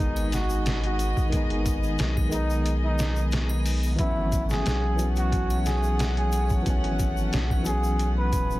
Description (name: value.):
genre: trip hop.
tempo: 90 BPM.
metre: 4/4.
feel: swing 53% on 16ths.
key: G# phrygian.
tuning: A4 = 440 Hz.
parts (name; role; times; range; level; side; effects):
trumpet with bucket mute; melody; 0.0-8.6 s; D#4 to B4; -31 LUFS; right 1 dB; vintage 12-bit sampler grit, tape echo.
tine electric piano; accompaniment; 0.0-8.6 s; D#3 to D#4; -30 LUFS; left 1 dB; tremolo, vintage 12-bit sampler grit, tape echo.
warm studio string section; sustained chords; 0.0-8.6 s; A3 to F#5; -35 LUFS; left 1 dB; none.
round analog bass; bass; 0.0-8.6 s; D#1 to B1; -26 LUFS; equal; none.
sub drop; sound effects; 0.0-1.3 s; none; barely audible; none; none.
trip hop sampler-style drum kit; drums; 0.2-8.5 s; hi-hat, kick drum, snare drum; -28 LUFS; equal; none.
triangle and tube shaker; percussion; 0.2-8.6 s; none; -43 LUFS; left 4 dB; none.
room: small room ambience.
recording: heavily compressed radio sound.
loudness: -22 LUFS.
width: side -17 dB against mid.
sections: 0.0-8.6 A section.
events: impact 0.0-1.3.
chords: 0.0 G#m; 4.0 A6/G#.